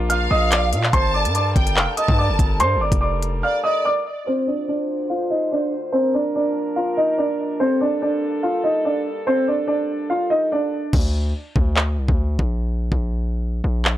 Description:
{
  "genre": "hip hop, drill",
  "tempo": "144 BPM",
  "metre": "4/4",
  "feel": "half-time",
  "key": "G minor",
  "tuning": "A4 = 442 Hz",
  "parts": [
    { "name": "dark concert grand piano", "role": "melody", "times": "0.0-10.9 s", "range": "C4 to F6", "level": "-20 LUFS", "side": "right 1 dB", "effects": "low-pass filter, analog delay" },
    { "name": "muted French horn section", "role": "sustained chords", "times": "0.0-10.9 s", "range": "D2 to C5", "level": "-29 LUFS", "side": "left 1 dB", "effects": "low-pass filter" },
    { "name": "distorted 808-style bass", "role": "bass", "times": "0.0-3.4, 10.9-14.0 s", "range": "F1 to Bb2", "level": "-21 LUFS", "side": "equal", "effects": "distortion" },
    { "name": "rich studio violin section", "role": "second line", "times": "0.1-3.8 s", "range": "D5 to A5", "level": "-25 LUFS", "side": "equal", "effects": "analog delay" },
    { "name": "drill drum kit", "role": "drums", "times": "0.1-3.3, 10.9-14.0 s", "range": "crash cymbal, handclaps, hi-hat, kick drum", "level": "-20 LUFS", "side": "equal", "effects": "none" }
  ],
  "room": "little or no reverb",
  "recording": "dry, gritty hardware recording",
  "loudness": "-18 LUFS",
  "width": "side -13 dB against mid",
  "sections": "0.0-4.3 A section; 4.3-10.9 B section; 10.9-14.0 C section",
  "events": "drums muted 3.4-4.3; filter sweep 4.3-10.9; hi-hats muted 10.9-14.0",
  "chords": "0.0 Bb; 0.9 Gmadd9; 4.3 Dm7; 5.9 Bb; 7.6 Gmadd9; 10.9 Bb; 12.6 N.C."
}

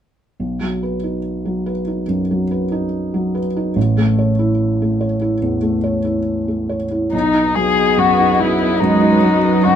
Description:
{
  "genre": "neoclassical piano and strings",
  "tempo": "72 BPM",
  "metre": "4/4",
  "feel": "rubato",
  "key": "unclear",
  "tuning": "A4 = 440 Hz",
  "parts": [
    { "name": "felt-muted upright piano", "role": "accompaniment", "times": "0.4-9.8 s", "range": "A1 to C#5", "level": "-17 LUFS", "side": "right 1 dB", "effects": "none" },
    { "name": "muted violin", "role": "melody", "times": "7.1-9.8 s", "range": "D#4 to G#4", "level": "-15 LUFS", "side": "left 6 dB", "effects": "none" },
    { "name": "muted viola", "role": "accompaniment", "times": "7.1-9.8 s", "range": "D#4 to G#4", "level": "-23 LUFS", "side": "right 3 dB", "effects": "none" },
    { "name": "warm analog pad", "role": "sustained chords", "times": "7.1-9.8 s", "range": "F#3 to D#5", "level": "-24 LUFS", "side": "right 1 dB", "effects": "chorus" },
    { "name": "muted cello", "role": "second line", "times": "7.6-9.8 s", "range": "F#3 to B3", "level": "-20 LUFS", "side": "right 6 dB", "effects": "none" }
  ],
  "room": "light reverb",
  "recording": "minimal, uncompressed stereo recording",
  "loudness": "-15 LUFS",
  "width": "side -9 dB against mid",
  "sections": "0.4-7.1 A section; 7.1-9.8 B section",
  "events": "none",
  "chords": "0.4 B; 3.8 A; 7.1 B"
}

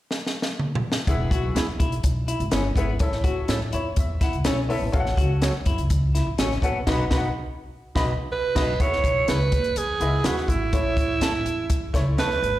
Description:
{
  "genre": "uptempo 1960s-style soul",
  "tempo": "124 BPM",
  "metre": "4/4",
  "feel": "straight",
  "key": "E major",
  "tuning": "A4 = 440 Hz",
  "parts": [
    { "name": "compact cocktail drum kit", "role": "drums", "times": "0.1-12.5 s", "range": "crash cymbal, hi-hat, kick drum, snare drum, toms", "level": "-24 LUFS", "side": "equal", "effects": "none" },
    { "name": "bright upright piano", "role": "accompaniment", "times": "1.1-12.4 s", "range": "A3 to B5", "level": "-30 LUFS", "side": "left 3 dB", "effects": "slapback echo" },
    { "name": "upright bass", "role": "bass", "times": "1.1-12.6 s", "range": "E1 to A2", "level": "-26 LUFS", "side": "equal", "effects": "none" },
    { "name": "electric guitar through a small old amp", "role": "riff", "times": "1.3-6.8 s", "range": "B3 to F#4", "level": "-30 LUFS", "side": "left 3 dB", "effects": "slapback echo" },
    { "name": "mellow electric guitar", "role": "stabs", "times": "1.6-12.3 s", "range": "B3 to C#5", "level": "-30 LUFS", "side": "right 4 dB", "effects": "slapback echo" },
    { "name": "growling alto saxophone", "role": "melody", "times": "8.3-12.6 s", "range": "E4 to C#5", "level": "-24 LUFS", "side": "right 4 dB", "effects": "slapback echo, tape echo" }
  ],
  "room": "light reverb",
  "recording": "live gig heard through the venue's PA, recital hall reverb",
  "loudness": "-21 LUFS",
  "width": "side -14 dB against mid",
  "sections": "0.0-1.1 A section; 1.1-8.8 B section; 8.8-12.6 C section",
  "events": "drum fill 0.1-1.1; upright piano fill 3.5-4.9; band accent 6.9-8.8",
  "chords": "0.0 N.C.; 1.1 E; 3.0 A; 4.9 F#m/A; 6.9 B; 8.8 E; 10.7 A"
}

